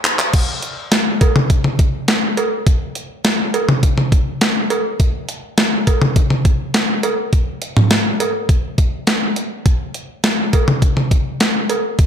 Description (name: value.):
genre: pop.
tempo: 103 BPM.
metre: 4/4.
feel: straight.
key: none.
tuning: none.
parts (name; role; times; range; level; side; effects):
clean 12-bit digital drum machine; drums; 0.0-12.1 s; cowbell, crash cymbal, handclaps, hi-hat, kick drum, snare drum, toms; -14 LUFS; equal; none.
room: light reverb.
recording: none.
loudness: -14 LUFS.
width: side -8 dB against mid.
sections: 0.3-12.1 A section.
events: drum fill 0.0-0.3.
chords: none.